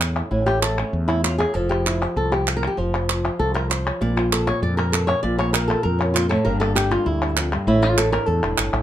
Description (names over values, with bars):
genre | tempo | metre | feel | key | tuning
flamenco | 195 BPM | 4/4 | straight | A phrygian dominant | A4 = 440 Hz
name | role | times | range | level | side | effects
flamenco guitar | melody | 0.0-8.8 s | F2 to D5 | -21 LUFS | equal | none
mellow fretless electric bass | bass | 0.0-8.8 s | E1 to F2 | -24 LUFS | equal | none
palmas hand claps | percussion | 0.0-8.8 s | none | -24 LUFS | right 1 dB | none
room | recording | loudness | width
moderate small room reverb, RT60 0.5 s | none | -18 LUFS | side -11 dB against mid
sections
0.0-8.8 A section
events
nylon-string guitar solo 0.0-8.8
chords
0.0 A; 1.5 F5; 4.0 Bb5; 6.5 Gm; 7.7 Asus4